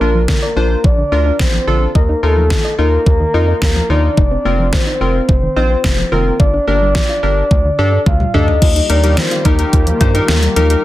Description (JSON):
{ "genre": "synth-pop", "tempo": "108 BPM", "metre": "4/4", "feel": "straight", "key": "unclear", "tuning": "A4 = 435 Hz", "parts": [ { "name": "soft octave-layered synth lead", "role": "melody", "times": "0.0-10.8 s", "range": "A4 to F5", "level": "-18 LUFS", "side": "left 1 dB", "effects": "chorus, tremolo" }, { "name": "warm analog keys", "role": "accompaniment", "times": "0.0-10.8 s", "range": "C4 to C5", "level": "-20 LUFS", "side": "left 2 dB", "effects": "chorus" }, { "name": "soft round pluck", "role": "arpeggios", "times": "0.0-10.6 s", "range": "D3 to Eb5", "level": "-23 LUFS", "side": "left 2 dB", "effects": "chorus, digital delay" }, { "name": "round analog bass", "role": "bass", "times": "0.0-10.8 s", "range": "F1 to G2", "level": "-15 LUFS", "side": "equal", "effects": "none" }, { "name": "pop drum kit", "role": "drums", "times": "0.3-10.8 s", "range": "crash cymbal, hi-hat, kick drum, snare drum, toms", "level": "-14 LUFS", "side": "equal", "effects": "overdrive" }, { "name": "brassy analog pad", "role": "sustained chords", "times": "8.6-10.8 s", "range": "Eb3 to G4", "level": "-23 LUFS", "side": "equal", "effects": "chorus" } ], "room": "light reverb", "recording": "dense, heavily limited modern master", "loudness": "-11 LUFS", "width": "side -15 dB against mid", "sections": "0.0-8.6 A section; 8.6-10.8 B section", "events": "drum fill 8.1-8.6", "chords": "0.0 Bb; 2.0 Ebsus2; 4.2 F7sus4; 6.4 Gm7; 7.5 Dsus4; 8.6 Ebadd9", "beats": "0.28 0.84 1.40 | 1.95 2.51 3.06 3.62 | 4.17 4.73 5.29 5.84 | 6.40 6.95 7.51 8.06 | 8.62 9.17 9.73 10.29 | 10.84" }